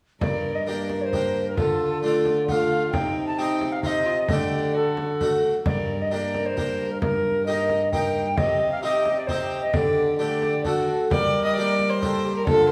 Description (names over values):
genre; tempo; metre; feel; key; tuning
classical, renaissance-style consort dance; 132 BPM; 3/4; straight; G minor; A4 = 441 Hz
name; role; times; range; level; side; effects
alto recorder; melody; 0.2-12.7 s; F4 to A5; -28 LUFS; equal; none
rich violin; second line; 0.2-12.7 s; Eb4 to Eb5; -31 LUFS; equal; none
harpsichord; accompaniment; 0.2-12.7 s; G2 to G4; -29 LUFS; equal; none
warm trombone; bass; 0.2-12.7 s; G2 to G3; -31 LUFS; equal; none
frame drum; percussion; 0.2-12.7 s; none; -32 LUFS; equal; none
room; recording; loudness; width
wet recital hall reverb, RT60 1.4 s; studio reverb; -23 LUFS; mono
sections
0.2-11.1 A section; 11.1-12.7 A section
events
none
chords
0.2 Gm; 1.6 Dm; 2.9 Cm; 4.3 Dsus4; 4.7 D; 5.7 Gm; 7.0 Eb/G; 8.4 Cm; 9.7 Dsus4; 10.7 D; 11.1 Gm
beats
| 0.21 0.67 1.12 | 1.58 2.03 2.48 | 2.93 3.38 3.84 | 4.29 4.75 5.21 | 5.66 6.12 6.57 | 7.02 7.47 7.93 | 8.38 8.83 9.28 | 9.74 10.19 10.65 | 11.11 11.57 12.02 | 12.47